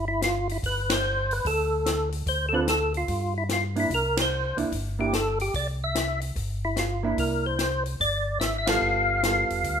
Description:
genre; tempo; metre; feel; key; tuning
soul jazz organ trio; 146 BPM; 4/4; swing 64% on 8ths; G mixolydian; A4 = 440 Hz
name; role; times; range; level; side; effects
percussive tonewheel organ; melody; 0.0-9.8 s; E4 to F5; -26 LUFS; left 1 dB; slow rotary speaker, chorus vibrato
mellow tonewheel organ; bass; 0.0-9.8 s; F1 to G2; -30 LUFS; equal; overdrive, chorus vibrato, slow rotary speaker
compact cocktail drum kit; drums; 0.2-9.8 s; hi-hat, kick drum, ride cymbal, snare drum; -30 LUFS; left 2 dB; none
hollow-body jazz guitar; accompaniment; 2.5-9.8 s; D3 to A4; -29 LUFS; right 4 dB; none
room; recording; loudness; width
moderate large studio reverb, RT60 0.9 s; minimal, uncompressed stereo recording; -23 LUFS; side -7 dB against mid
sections
0.0-9.8 A section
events
band accent 0.8, 4.1, 8.6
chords
0.0 C (rootless); 0.6 Gsus2; 2.3 Dm7; 3.1 G5; 3.9 C9; 8.8 G9

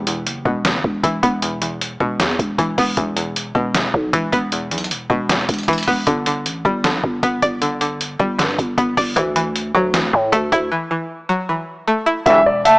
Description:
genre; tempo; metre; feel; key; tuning
hip hop, trap; 155 BPM; 4/4; half-time; E minor; A4 = 439 Hz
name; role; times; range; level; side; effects
string-like resonator pluck; accompaniment; 0.0-12.3 s; E2 to D5; -20 LUFS; equal; chorus
growling 808-style bass; bass; 0.0-12.8 s; E1 to A2; -22 LUFS; equal; none
lo-fi sampler-style drum kit; drums; 0.1-12.7 s; hi-hat, kick drum, snare drum; -21 LUFS; equal; none
dark baby grand piano; melody; 12.3-12.8 s; D5 to E5; -12 LUFS; equal; none
warm brass ensemble; stabs; 12.3-12.4 s; B1 to E3; -19 LUFS; left 1 dB; none
breathy concert flute; second line; 12.7-12.8 s; A5; -10 LUFS; right 1 dB; none
room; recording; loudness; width
light reverb, small room ambience; small speaker sound; -16 LUFS; side -24 dB against mid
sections
0.0-12.3 A section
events
break 10.7-12.3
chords
0.0 E5; 6.1 G; 9.2 Dadd9; 12.3 Em

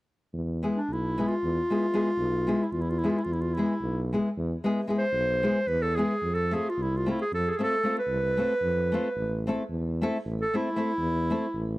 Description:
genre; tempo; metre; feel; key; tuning
balkan folk, Balkan wedding band; free time; none; none; unclear; A4 = 440 Hz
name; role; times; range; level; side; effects
mellow tuba; bass; 0.3-11.8 s; A1 to F2; -30 LUFS; equal; none
nylon-string guitar; accompaniment; 0.6-11.5 s; G#3 to A4; -28 LUFS; left 1 dB; none
clear clarinet; melody; 0.8-11.8 s; D4 to C5; -28 LUFS; equal; none
room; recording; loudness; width
small room ambience; dry, close 1970s-style studio recording; -25 LUFS; side -18 dB against mid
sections
0.3-11.8 A section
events
none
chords
0.3 E; 6.2 F; 9.2 Am

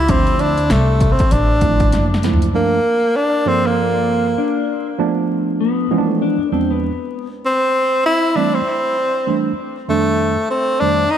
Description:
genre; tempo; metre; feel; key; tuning
hip hop, jazz-hop; 98 BPM; 4/4; swing 60% on 16ths; unclear; A4 = 440 Hz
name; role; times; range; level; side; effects
breathy tenor saxophone; melody; 0.0-11.2 s; A3 to E4; -16 LUFS; left 1 dB; analog delay
upright bass; bass; 0.0-2.5 s; F#1 to D2; -18 LUFS; equal; none
tine electric piano; accompaniment; 0.1-11.0 s; E2 to A4; -20 LUFS; right 6 dB; lush chorus
house drum kit; drums; 0.1-2.5 s; hi-hat, kick drum, snare drum, toms; -18 LUFS; equal; none
mellow electric guitar; second line; 4.4-7.3 s; B3 to D4; -21 LUFS; left 11 dB; lush chorus
room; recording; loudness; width
wet plate reverb, RT60 2.8 s; dreamy mix soaked in reverb, vinyl crackle; -14 LUFS; side -9 dB against mid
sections
0.0-2.5 A section; 2.5-11.2 B section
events
drum fill 1.9-2.5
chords
0.0 Dm9; 2.5 Gm9; 5.0 Bm7b5; 6.2 E7b9; 7.4 Am7; 9.9 F13

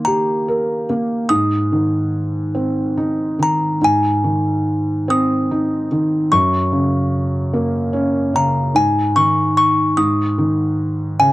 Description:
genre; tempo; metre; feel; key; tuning
children's music, lullaby; 49 BPM (dotted quarters); 6/8; rubato; unclear; A4 = 440 Hz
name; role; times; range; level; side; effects
music box; melody; 0.0-11.3 s; Ab5 to Eb6; -17 LUFS; left 1 dB; cassette tape
felt-muted upright piano; accompaniment; 0.0-11.3 s; Gb2 to Bb4; -17 LUFS; equal; cassette tape
room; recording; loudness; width
light reverb; home recording on cassette; -15 LUFS; side -17 dB against mid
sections
0.0-11.3 A section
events
none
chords
0.0 Eb; 1.3 Ab; 6.3 Gb; 8.8 Ab5

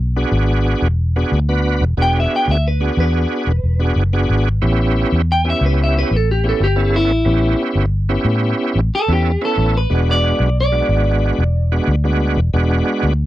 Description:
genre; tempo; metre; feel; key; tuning
blues; 91 BPM; 4/4; straight; E mixolydian; A4 = 440 Hz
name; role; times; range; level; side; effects
vintage muted fingered electric bass; bass; 0.0-13.3 s; E1 to A2; -16 LUFS; equal; none
bright tonewheel organ; accompaniment; 0.2-13.1 s; G#3 to B4; -19 LUFS; right 1 dB; slow rotary speaker, overdrive, chorus vibrato
clean electric guitar; melody; 2.0-12.5 s; E4 to G5; -20 LUFS; equal; none
room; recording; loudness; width
little or no reverb; dry, close 1970s-style studio recording; -14 LUFS; side -15 dB against mid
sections
0.0-13.3 A section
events
none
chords
0.0 E7; 4.6 A7; 9.9 E7

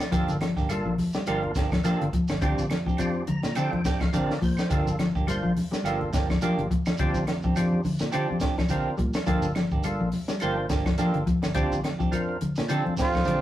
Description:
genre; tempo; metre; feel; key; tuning
afrobeat; 105 BPM; 4/4; swing 56% on 16ths; G minor; A4 = 438 Hz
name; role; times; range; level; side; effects
percussive tonewheel organ; accompaniment; 0.0-13.4 s; Bb3 to Bb5; -31 LUFS; equal; slow rotary speaker, overdrive
mellow electric guitar; arpeggios; 0.0-13.4 s; D3 to G3; -28 LUFS; left 2 dB; none
clean electric guitar; stabs; 0.0-13.4 s; F3 to G4; -32 LUFS; right 5 dB; none
compact cocktail drum kit; drums; 0.0-13.4 s; hi-hat, kick drum, snare drum; -28 LUFS; equal; none
claves; percussion; 0.0-13.3 s; none; -43 LUFS; right 5 dB; none
shekere; percussion; 0.0-13.4 s; none; -40 LUFS; right 1 dB; none
fingered electric bass; bass; 0.1-13.4 s; G1 to Bb2; -33 LUFS; right 1 dB; none
congas; percussion; 0.3-13.4 s; none; -34 LUFS; equal; none
warm trumpet; melody; 13.0-13.4 s; F4; -27 LUFS; right 2 dB; none
breathy baritone saxophone; second line; 13.0-13.4 s; F2; -35 LUFS; equal; none
raspy alto saxophone; second line; 13.0-13.4 s; F3; -30 LUFS; right 3 dB; none
room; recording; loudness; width
moderate studio reverb, RT60 0.6 s; rough rehearsal-room recording; -23 LUFS; side -13 dB against mid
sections
0.0-13.4 A section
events
tonewheel organ fill 3.0-4.7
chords
0.1 Gm7; 2.4 Bb69; 4.7 Gm7; 7.0 Bb69; 9.3 Gm7; 11.6 Bb69

